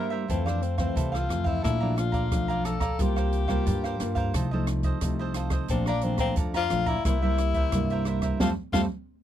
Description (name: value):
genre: samba and choro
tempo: 89 BPM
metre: 4/4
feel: straight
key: F major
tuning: A4 = 440 Hz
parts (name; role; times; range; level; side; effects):
- breathy tenor saxophone; second line; 0.0-8.8 s; C4 to Bb4; -30 LUFS; left 9 dB; none
- cavaquinho; accompaniment; 0.0-8.8 s; E4 to Bb5; -34 LUFS; right 6 dB; none
- nylon-string guitar; accompaniment; 0.0-8.8 s; F2 to F4; -30 LUFS; right 1 dB; none
- upright bass; bass; 0.3-8.9 s; Bb1 to G2; -29 LUFS; equal; none
- open jazz drum kit; drums; 0.3-8.9 s; hi-hat, kick drum, rim click, snare drum; -31 LUFS; equal; none
room: little or no reverb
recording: dry, close 1970s-style studio recording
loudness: -24 LUFS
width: side -11 dB against mid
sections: 0.0-9.2 A section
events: tenor saxophone solo 0.0-9.2; band accent 8.4-9.2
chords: 0.3 Fmaj7; 1.6 Bbmaj7; 3.0 C7sus4; 4.3 F7/C; 5.7 Bbmaj7; 7.1 C7; 8.4 Fadd9